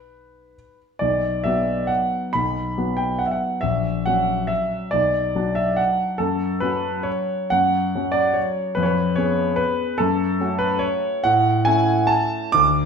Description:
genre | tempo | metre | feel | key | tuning
classical, piano waltz | 122-153 BPM | 3/4 | rubato | B minor | A4 = 443 Hz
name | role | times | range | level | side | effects
clear grand piano | solo | 0.0-12.9 s | A#1 to D6 | -18 LUFS | equal | none
room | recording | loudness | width
wet stone room reverb, RT60 1.0 s | heard from further back in the room | -19 LUFS | side -6 dB against mid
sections
0.0-1.0 A section; 1.0-12.9 B section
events
none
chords
0.0 B5; 3.6 F#7/A#; 4.9 Bm; 6.2 F#m; 8.8 C#7/E#; 10.0 F#m; 11.3 A

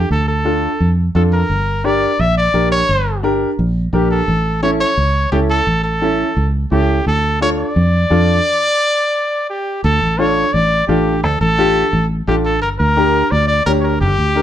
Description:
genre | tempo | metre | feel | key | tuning
latin | 172 BPM | 4/4 | straight | D harmonic minor | A4 = 440 Hz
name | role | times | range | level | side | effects
clear trumpet | melody | 0.0-14.4 s | G4 to E5 | -17 LUFS | equal | plate reverb
fingered electric bass | bass | 0.0-14.4 s | G1 to F2 | -16 LUFS | equal | none
clear upright piano | accompaniment | 0.4-14.4 s | C#4 to C#5 | -18 LUFS | left 1 dB | none
room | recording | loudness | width
wet studio reverb, RT60 0.6 s | heard from further back in the room | -13 LUFS | side -10 dB against mid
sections
0.0-9.8 A section; 9.8-14.4 B section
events
stop 8.5-9.8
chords
0.0 Dm; 1.5 Gm; 4.3 A; 7.1 Dm; 12.6 Gm

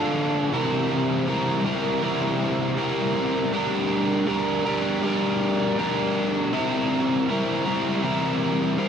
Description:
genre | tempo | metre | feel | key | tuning
rock | 80 BPM | 4/4 | straight | C mixolydian | A4 = 441 Hz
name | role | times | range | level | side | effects
biting overdriven guitar | solo | 0.0-8.9 s | C3 to Bb4 | -21 LUFS | equal | wide subtle chorus
room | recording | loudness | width
moderate huge ambient reverb, RT60 6.9 s | dark, warm production | -21 LUFS | side -7 dB against mid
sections
0.0-8.9 A section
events
none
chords
0.0 Dm; 0.5 C5; 3.5 Gm; 6.5 C5

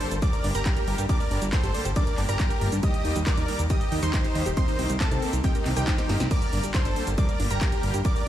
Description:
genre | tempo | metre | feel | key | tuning
uplifting trance | 138 BPM | 4/4 | straight | G minor | A4 = 440 Hz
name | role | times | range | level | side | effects
dense compressed supersaw | melody | 0.0-8.3 s | C4 to Eb5 | -30 LUFS | equal | sidechain pumping, digital delay
wide unison pluck | second line | 0.0-8.3 s | G5 to Eb6 | -38 LUFS | right 2 dB | cassette tape, sidechain pumping, ping-pong delay
clear symphonic string section | sustained chords | 0.0-8.2 s | D3 to G4 | -35 LUFS | left 1 dB | sidechain pumping
wide unison pluck | arpeggios | 0.0-8.3 s | G3 to G5 | -34 LUFS | right 2 dB | sidechain pumping, ping-pong delay
punchy analog drum machine | drums | 0.0-8.2 s | crash cymbal, handclaps, hi-hat, shaker, snare drum | -34 LUFS | equal | none
fat analog bass | bass | 0.1-8.0 s | Eb1 to G2 | -27 LUFS | equal | sidechain pumping
electronic kick drum | drums | 0.2-8.1 s | none | -25 LUFS | equal | overdrive
room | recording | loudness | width
digital ambience | played on a big sound system in a bare room, stone room reverb | -22 LUFS | side -12 dB against mid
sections
0.0-8.3 A section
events
drum fill 6.0-6.3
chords
0.0 Gm; 2.8 Eb; 4.6 Cm7; 6.3 Gm

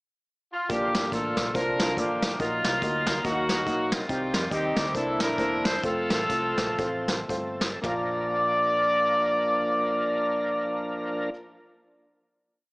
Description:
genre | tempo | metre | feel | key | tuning
uptempo gospel | 107-142 BPM | 4/4 | swing 58% on 8ths | Bb major | A4 = 440 Hz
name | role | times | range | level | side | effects
clear horn section | melody | 0.5-11.3 s | Bb3 to D5 | -26 LUFS | equal | none
warm upright piano | accompaniment | 0.7-11.3 s | Bb1 to Eb5 | -32 LUFS | equal | none
overdriven tonewheel organ | sustained chords | 0.7-11.3 s | D3 to Bb4 | -33 LUFS | equal | slow rotary speaker, chorus vibrato
hollow-body short-scale fingered electric bass | bass | 0.7-11.3 s | E1 to F2 | -40 LUFS | equal | none
vintage brush drum kit | drums | 0.7-8.0 s | hi-hat, kick drum, snare drum, toms | -29 LUFS | equal | none
room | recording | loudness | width
light reverb, small room reverb | small speaker sound | -24 LUFS | side -33 dB against mid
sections
0.0-0.7 pickup bar; 0.7-7.8 breakdown; 7.8-12.3 final chord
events
slowing down 4.1-7.8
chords
0.0 N.C.; 0.7 Bb; 2.4 Ebm/Bb; 4.1 Cm; 4.9 C9; 5.8 F; 7.8 Bb

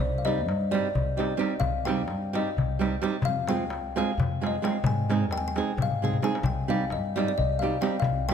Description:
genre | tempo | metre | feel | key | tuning
balkan folk, Balkan wedding band | 261 BPM (eighths) | 7/8 | straight | C minor | A4 = 440 Hz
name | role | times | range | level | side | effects
kalimba | second line | 0.0-8.3 s | D5 to Ab5 | -30 LUFS | left 5 dB | none
upright bass | bass | 0.0-8.3 s | C2 to Ab2 | -31 LUFS | equal | none
darbuka | percussion | 0.1-8.3 s | none | -31 LUFS | left 3 dB | none
flamenco guitar | accompaniment | 0.3-8.3 s | G3 to Ab4 | -29 LUFS | right 7 dB | none
room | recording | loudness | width
moderate recital hall reverb, RT60 1.6 s | dark, warm production | -24 LUFS | side -8 dB against mid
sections
0.0-8.3 A section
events
kalimba solo 0.0-8.3; drum fill 5.9-6.4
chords
0.0 Cm; 3.2 Fm; 4.8 Ab; 6.4 Cm

